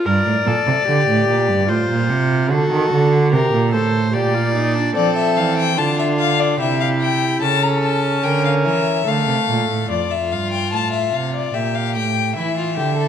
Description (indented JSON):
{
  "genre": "classical, baroque-style fugue for string quartet",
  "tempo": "73 BPM",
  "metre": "3/4",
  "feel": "straight",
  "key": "unclear",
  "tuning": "A4 = 440 Hz",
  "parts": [
    { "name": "warm viola", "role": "accompaniment", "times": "0.0-9.9 s", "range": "A3 to Bb4", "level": "-22 LUFS", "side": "right 1 dB", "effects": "none" },
    { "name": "rich violin", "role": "second line", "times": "0.1-13.1 s", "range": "E4 to D5", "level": "-22 LUFS", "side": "left 3 dB", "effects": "none" },
    { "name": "warm cello", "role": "bass", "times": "0.1-13.1 s", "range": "F2 to F3", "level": "-19 LUFS", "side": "right 4 dB", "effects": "none" },
    { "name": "warm violin", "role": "melody", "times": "5.0-13.1 s", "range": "D5 to Bb5", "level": "-20 LUFS", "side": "left 10 dB", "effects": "none" }
  ],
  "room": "wet recital hall reverb, RT60 1.7 s",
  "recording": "none",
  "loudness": "-15 LUFS",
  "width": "side -8 dB against mid",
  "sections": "0.0-9.9 A section; 9.9-13.1 B section",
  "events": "none",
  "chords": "0.1 Gm; 1.7 F/A; 2.5 D; 4.1 Gm/Bb; 5.0 Dm; 6.6 C; 7.4 A/C#; 9.1 Dm; 9.9 F; 11.5 Bb5; 12.4 Em",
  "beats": "| 0.06 0.87 1.69 | 2.50 3.32 4.14 | 4.96 5.78 6.60 | 7.43 8.24 9.07 | 9.89 10.72 11.54 | 12.36"
}